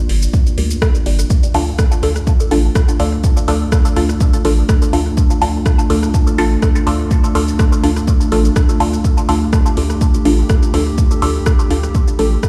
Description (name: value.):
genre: dub techno.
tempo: 124 BPM.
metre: 4/4.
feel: swing 54% on 16ths.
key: D minor.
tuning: A4 = 442 Hz.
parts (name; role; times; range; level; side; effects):
dark analog pad; sustained chords; 0.0-12.5 s; A3 to G4; -24 LUFS; equal; chorus, vintage 12-bit sampler grit, sidechain pumping.
filtered dub chord stab; stabs; 0.1-12.4 s; D4 to D5; -22 LUFS; equal; phaser, sidechain pumping, dub echo.
warm sub bass; bass; 0.1-12.4 s; G1 to D2; -19 LUFS; equal; sidechain pumping.
deep house drum kit; drums; 0.1-12.5 s; hi-hat, rim click, shaker; -28 LUFS; equal; overdrive, studio reverb, dub echo.
electronic kick drum; drums; 0.3-12.5 s; none; -15 LUFS; equal; overdrive, studio reverb.
room: digital ambience.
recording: played on a big sound system in a bare room, stone room reverb.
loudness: -14 LUFS.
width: mono.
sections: 0.0-1.3 A section; 1.3-12.5 A section.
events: filter sweep on synth stab 0.0-1.3.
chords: 0.0 Gm; 1.3 Dm.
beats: 0.34 0.82 | 1.30 1.79 2.27 2.75 | 3.24 3.72 4.21 4.69 | 5.17 5.66 6.14 6.62 | 7.11 7.59 8.08 8.56 | 9.04 9.53 10.01 10.50 | 10.98 11.46 11.95 12.43.